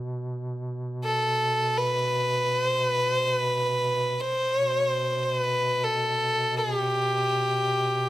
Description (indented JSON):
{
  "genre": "caucasian folk, Caucasian lament",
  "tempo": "free time",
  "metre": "none",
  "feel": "none",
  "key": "unclear",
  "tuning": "A4 = 441 Hz",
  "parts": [
    { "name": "mellow duduk", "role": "drone", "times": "0.0-8.1 s", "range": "B2", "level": "-31 LUFS", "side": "right 1 dB", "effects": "none" },
    { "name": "rich fiddle", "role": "melody", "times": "1.0-8.1 s", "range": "G4 to C5", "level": "-23 LUFS", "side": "equal", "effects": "none" }
  ],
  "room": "moderate scoring stage reverb, RT60 2.0 s",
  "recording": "close, detailed microphones",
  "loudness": "-23 LUFS",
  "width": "side -15 dB against mid",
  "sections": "0.0-8.1 A section",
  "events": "none",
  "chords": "none"
}